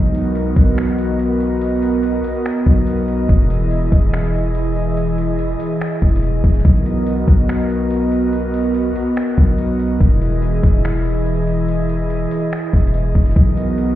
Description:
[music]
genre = hip hop, atmospheric cloud-rap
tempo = 143 BPM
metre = 4/4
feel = half-time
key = B major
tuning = A4 = 440 Hz
[part]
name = airy breathy pad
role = sustained chords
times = 0.0-14.0 s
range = E3 to D#5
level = -19 LUFS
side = equal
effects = chorus, sidechain pumping
[part]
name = concert harp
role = arpeggios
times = 0.0-2.4 s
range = D#4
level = -30 LUFS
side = left 1 dB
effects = none
[part]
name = long sustained 808-style bass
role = bass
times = 0.0-14.0 s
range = E1 to B1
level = -18 LUFS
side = equal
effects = none
[part]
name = trip hop sampler-style drum kit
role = drums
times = 0.1-13.9 s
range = finger snaps, hi-hat, kick drum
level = -15 LUFS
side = equal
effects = vintage 12-bit sampler grit
[sound]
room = little or no reverb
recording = heard muffled through a wall, stone room reverb, EQ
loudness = -14 LUFS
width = side -13 dB against mid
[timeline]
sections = 0.0-14.0 A section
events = none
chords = 0.0 Bmaj7; 3.3 Emaj7; 6.6 Bmaj7; 10.0 Emaj7; 13.4 Bmaj7

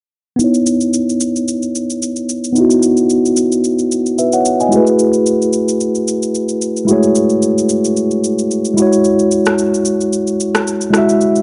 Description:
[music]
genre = amapiano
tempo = 111 BPM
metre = 4/4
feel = swing 55% on 16ths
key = C# minor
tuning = A4 = 440 Hz
[part]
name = mellow tine electric piano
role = accompaniment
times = 0.4-11.4 s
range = G#3 to G#5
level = -14 LUFS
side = equal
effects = low-pass filter
[part]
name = electronic shaker and rim click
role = drums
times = 0.4-11.4 s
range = none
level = -23 LUFS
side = equal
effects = none
[sound]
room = light reverb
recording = nothing above 10.8 kHz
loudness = -14 LUFS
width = mono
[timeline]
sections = 0.4-11.4 A section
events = filter sweep on tine electric piano 0.4-11.4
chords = 0.4 C#m9; 4.7 F#m11; 8.8 E69/G#

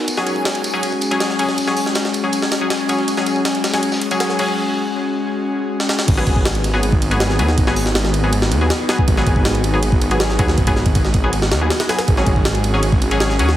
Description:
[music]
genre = drum and bass, jungle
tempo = 160 BPM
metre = 4/4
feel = straight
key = G# minor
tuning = A4 = 440 Hz
[part]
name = airy breathy pad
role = sustained chords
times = 0.0-13.6 s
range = G#3 to G#4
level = -22 LUFS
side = left 2 dB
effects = chorus, vintage 12-bit sampler grit
[part]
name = backwards swelling texture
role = texture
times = 0.0-4.6 s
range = G#5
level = -34 LUFS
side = equal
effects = none
[part]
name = crunchy breakbeat drum kit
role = drums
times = 0.1-4.5 s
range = hi-hat, snare drum, tambourine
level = -29 LUFS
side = left 1 dB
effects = high-pass filter on hats, high-pass filter on snare, high-pass filter on perc, high-pass filter on room
[part]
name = jungle sampler-style drum kit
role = drums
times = 0.1-13.6 s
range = crash cymbal, hi-hat, kick drum, ride cymbal, snare drum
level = -19 LUFS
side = equal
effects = high-pass filter on kick, high-pass filter on cymbals, high-pass filter on snare, high-pass filter on hats, high-pass filter on room
[part]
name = band-passed chord stab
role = stabs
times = 0.2-13.5 s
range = F#3 to G#4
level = -21 LUFS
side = left 1 dB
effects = chorus, cassette tape, dub echo
[part]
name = detuned saw bass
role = bass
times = 6.1-13.6 s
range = G#1 to D#2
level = -18 LUFS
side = equal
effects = none
[sound]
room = moderate digital room reverb, RT60 1.3 s, small room ambience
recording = heavily compressed radio sound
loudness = -15 LUFS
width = side -12 dB against mid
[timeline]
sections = 0.0-6.1 A section; 6.1-13.6 B section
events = build-up 0.0-6.1; filter sweep on analog synth pad 0.0-6.1; break 4.6-6.1; drum fill 5.8; drop 6.1-13.6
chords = 0.1 C#sus4; 6.1 G#m7; 12.1 C#sus4/G#

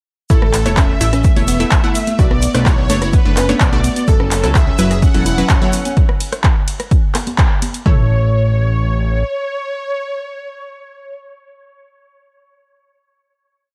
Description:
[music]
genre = progressive house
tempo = 127 BPM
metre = 4/4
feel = straight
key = A major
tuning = A4 = 441 Hz
[part]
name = soft supersaw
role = melody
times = 0.3-11.2 s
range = A4 to F#5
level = -26 LUFS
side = equal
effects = subtle chorus, sidechain pumping, dub echo
[part]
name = glassy wavetable pluck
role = arpeggios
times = 0.3-11.2 s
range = A3 to A4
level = -25 LUFS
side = equal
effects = chorus, sidechain pumping, dub echo
[part]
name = unison pluck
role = stabs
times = 0.3-11.2 s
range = F#3 to F#5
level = -24 LUFS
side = equal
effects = sidechain pumping, dub echo
[part]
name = fat analog bass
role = bass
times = 0.3-9.2 s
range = E1 to C#2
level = -20 LUFS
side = equal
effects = sidechain pumping
[part]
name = deep house drum kit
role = drums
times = 0.3-8.0 s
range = kick drum, toms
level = -16 LUFS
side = equal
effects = overdrive
[part]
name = deep house drum kit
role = drums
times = 0.3-7.8 s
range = handclaps, hi-hat, ride cymbal, rim click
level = -24 LUFS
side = equal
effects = overdrive
[part]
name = tube shaker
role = percussion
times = 0.3-6.0 s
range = none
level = -33 LUFS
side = equal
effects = none
[part]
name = electronic cowbell, congas and rim click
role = percussion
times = 0.7-7.7 s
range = none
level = -28 LUFS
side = equal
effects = sidechain pumping on perc, sidechain pumping on snare
[sound]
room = light reverb, digital ambience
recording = dark, warm production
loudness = -15 LUFS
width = mono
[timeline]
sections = 0.3-7.9 drop; 7.9-11.6 final chord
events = drop 0.3-7.9; band accent 7.4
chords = 0.3 A; 2.2 Bm7; 4.1 F#m7; 6.0 N.C.; 7.9 A

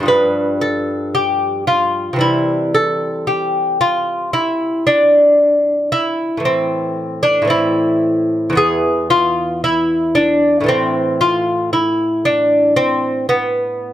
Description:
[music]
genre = classical, baroque-style dance for lute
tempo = 57 BPM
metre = 4/4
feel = rubato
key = C major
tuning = A4 = 439 Hz
[part]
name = lute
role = solo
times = 0.0-13.9 s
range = E2 to B4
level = -13 LUFS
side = equal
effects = none
[sound]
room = light reverb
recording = close, detailed microphones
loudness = -13 LUFS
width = side -12 dB against mid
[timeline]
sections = 0.0-13.9 A section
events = none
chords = 0.1 G9; 2.2 C; 6.5 Am; 8.6 E5; 10.7 A5

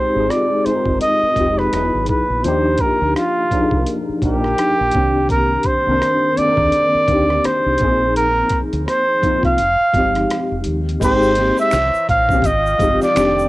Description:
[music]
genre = R&B, neo-soul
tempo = 84 BPM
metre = 4/4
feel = swing 59% on 16ths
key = F dorian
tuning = A4 = 440 Hz
[part]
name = clear flugelhorn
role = melody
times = 0.0-13.5 s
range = F4 to F5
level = -16 LUFS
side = right 1 dB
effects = cassette tape
[part]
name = tine electric piano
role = accompaniment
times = 0.0-13.5 s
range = Eb3 to Bb4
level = -19 LUFS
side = left 2 dB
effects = ensemble chorus
[part]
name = deep dub fingered electric bass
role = bass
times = 0.2-13.5 s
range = E1 to Eb2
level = -23 LUFS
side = equal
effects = none
[part]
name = boom bap sampler-style drum kit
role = drums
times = 0.3-13.4 s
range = crash cymbal, finger snaps, hi-hat, kick drum, rim click, snare drum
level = -23 LUFS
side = equal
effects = cassette tape
[part]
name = tonewheel organ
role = sustained chords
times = 11.0-13.5 s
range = Eb3 to Bb5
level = -29 LUFS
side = right 1 dB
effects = none
[part]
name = tube shaker and finger snaps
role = percussion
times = 11.0-13.5 s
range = none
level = -34 LUFS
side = right 5 dB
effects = none
[sound]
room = light reverb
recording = home recording on cassette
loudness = -14 LUFS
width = side -18 dB against mid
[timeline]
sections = 0.0-11.0 A section; 11.0-13.5 B section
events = none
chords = 0.0 Fm9; 1.7 Emaj9; 2.4 Ebmaj9; 4.9 Cm9; 7.8 Bb9sus4; 9.6 Fm7; 11.0 Abmaj7; 11.7 C7b9; 12.4 Fm9/Ab

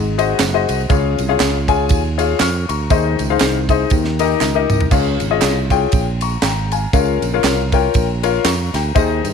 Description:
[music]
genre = uptempo gospel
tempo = 119 BPM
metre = 4/4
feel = swing 57% on 8ths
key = unclear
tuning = A4 = 443 Hz
[part]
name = warm concert grand piano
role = accompaniment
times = 0.0-9.3 s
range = Ab2 to F6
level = -17 LUFS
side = left 10 dB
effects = none
[part]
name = fingered electric bass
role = bass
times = 0.0-9.3 s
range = Gb1 to G2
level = -20 LUFS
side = right 3 dB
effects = none
[part]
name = tight funk drum kit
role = drums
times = 0.2-9.3 s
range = crash cymbal, kick drum, ride cymbal, snare drum, toms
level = -20 LUFS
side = right 3 dB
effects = none
[part]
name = tambourine and handclaps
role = percussion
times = 0.2-9.3 s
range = none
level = -27 LUFS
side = right 15 dB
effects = none
[sound]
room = light reverb, small room ambience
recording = 1960s-style stereo with parts hard left and right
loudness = -14 LUFS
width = side -6 dB against mid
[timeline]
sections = 0.0-9.3 A section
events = grand piano fill 3.9-4.9; drum fill 4.4-4.9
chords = 0.0 Ab7; 0.9 Db; 2.9 Ab; 3.9 Eb; 4.9 Db; 6.9 Bbm

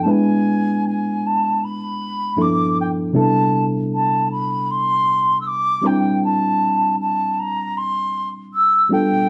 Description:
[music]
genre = R&B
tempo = 78 BPM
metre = 4/4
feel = swing 61% on 16ths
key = unclear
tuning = A4 = 440 Hz
[part]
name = baroque flute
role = melody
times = 0.0-9.3 s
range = G5 to E6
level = -21 LUFS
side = equal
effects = none
[part]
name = reed electric piano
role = accompaniment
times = 0.0-9.3 s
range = G2 to B4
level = -22 LUFS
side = equal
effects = overdrive
[sound]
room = wet stone room reverb, RT60 1.0 s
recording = band playing live in one room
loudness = -19 LUFS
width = mono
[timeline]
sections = 0.1-9.3 A section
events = none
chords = 0.1 E7; 2.4 G13; 3.1 Cmaj13; 5.8 C9

